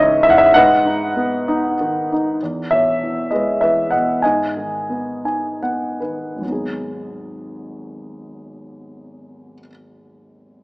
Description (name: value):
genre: classical, lyrical solo piano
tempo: 68-105 BPM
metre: 3/4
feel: rubato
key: G# minor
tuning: A4 = 440 Hz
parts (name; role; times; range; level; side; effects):
- dark grand piano; solo; 0.0-10.6 s; G#1 to G#5; -16 LUFS; equal; none
room: moderate scoring stage reverb, RT60 1.7 s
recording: small speaker sound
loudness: -15 LUFS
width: side -26 dB against mid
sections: 0.0-2.4 A section; 2.4-6.4 B section; 6.4-10.6 C section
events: slowing down 2.4-6.4; grand piano fill 4.9-6.4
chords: 0.0 C#m; 0.5 G#m7; 2.4 E; 4.2 G#m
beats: | 0.55 1.15 1.78 | 2.40 3.01 3.61 | 4.22 4.88 5.61 | 6.43 7.26 8.07 | 8.87 9.69 10.54